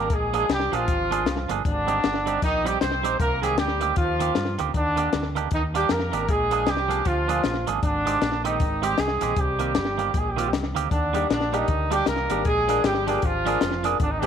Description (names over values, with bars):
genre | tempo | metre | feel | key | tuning
ska | 156 BPM | 4/4 | swing 60% on 8ths | unclear | A4 = 441 Hz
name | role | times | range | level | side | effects
mellow horn section | melody | 0.0-14.3 s | D3 to C5 | -25 LUFS | right 1 dB | none
clean electric guitar | accompaniment | 0.0-14.3 s | Eb3 to Ab4 | -29 LUFS | right 11 dB | none
fingered electric bass | bass | 0.0-14.3 s | F1 to G2 | -30 LUFS | equal | none
compact cocktail drum kit | drums | 0.1-14.3 s | hi-hat, kick drum, snare drum | -27 LUFS | left 3 dB | slapback echo
bright upright piano | stabs | 11.1-14.3 s | D4 to C5 | -30 LUFS | left 10 dB | none
room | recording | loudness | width
moderate echo chamber reverb, RT60 1.8 s | 1960s-style stereo with parts hard left and right | -21 LUFS | side -8 dB against mid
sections
0.0-14.3 A section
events
none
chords
0.1 Bb7; 1.6 Abmaj7; 3.2 Cm7; 4.7 Ebmaj7; 6.3 Bb7; 7.8 Abmaj7; 9.4 Cm7; 10.9 Ebmaj7; 12.5 Bb7